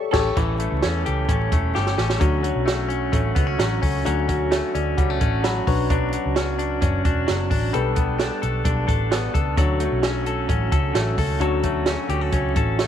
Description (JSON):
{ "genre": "jangly indie pop", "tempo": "130 BPM", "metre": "4/4", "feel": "straight", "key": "D major", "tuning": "A4 = 440 Hz", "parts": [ { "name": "bright reed electric piano", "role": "accompaniment", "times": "0.0-12.9 s", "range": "D4 to B5", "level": "-29 LUFS", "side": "left 9 dB", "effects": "none" }, { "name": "electric guitar through a small old amp", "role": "accompaniment", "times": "0.1-12.9 s", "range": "A2 to A4", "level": "-28 LUFS", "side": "right 11 dB", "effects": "tremolo" }, { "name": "vintage muted picked electric bass", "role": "bass", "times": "0.1-12.9 s", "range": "E1 to E2", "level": "-24 LUFS", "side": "equal", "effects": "none" }, { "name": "compact cocktail drum kit", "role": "drums", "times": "0.1-12.9 s", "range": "crash cymbal, hi-hat, kick drum, snare drum", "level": "-24 LUFS", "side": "right 2 dB", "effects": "none" }, { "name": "direct-recorded clean electric guitar", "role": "arpeggios", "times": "0.4-12.9 s", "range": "E3 to A4", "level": "-26 LUFS", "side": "left 10 dB", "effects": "tape echo" } ], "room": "light reverb, small room reverb", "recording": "1960s-style stereo with parts hard left and right, vinyl crackle", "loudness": "-19 LUFS", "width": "side -9 dB against mid", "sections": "0.4-2.2 A section; 2.2-12.9 B section", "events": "band accent 0.0-0.4; drum fill 1.7-2.2; reed electric piano fill 4.5-5.9", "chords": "0.4 A7; 2.2 Dmaj7; 5.7 Bmadd9; 7.7 Gadd9/B; 9.6 Dmaj7" }